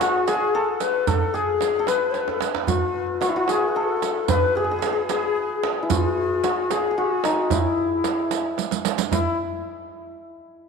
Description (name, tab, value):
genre	Persian modal ensemble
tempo	75 BPM (dotted quarters)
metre	6/8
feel	straight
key	unclear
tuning	A4 = 443 Hz
part	santur	melody	0.0-9.9 s	D#4 to B4	-24 LUFS	left 1 dB	none
part	breathy bright low ney	second line	0.0-9.4 s	E4 to C5+47c	-25 LUFS	left 7 dB	none
part	riq	percussion	0.0-9.4 s	none	-30 LUFS	right 14 dB	none
part	tombak	percussion	0.0-9.4 s	none	-27 LUFS	right 8 dB	none
room	wet echo chamber reverb, RT60 2.4 s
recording	1960s-style stereo with parts hard left and right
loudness	-20 LUFS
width	side -5 dB against mid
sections	0.0-9.1 A section; 9.1-10.7 B section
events	drum fill 2.1-2.7, 8.6-9.1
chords	none